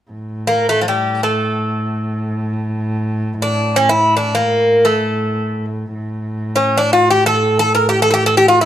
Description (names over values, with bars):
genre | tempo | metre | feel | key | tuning
turkish | free time | none | none | A makam hicaz | A4 = 435 Hz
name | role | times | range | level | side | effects
warm cello | drone | 0.1-8.7 s | A2 | -21 LUFS | equal | none
Greek bouzouki | melody | 0.5-8.7 s | F#3-40c to Bb4 | -13 LUFS | equal | plate reverb
room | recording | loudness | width
moderate small room reverb, RT60 0.5 s | none | -14 LUFS | side -11 dB against mid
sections
0.1-8.7 A section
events
none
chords
none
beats
free time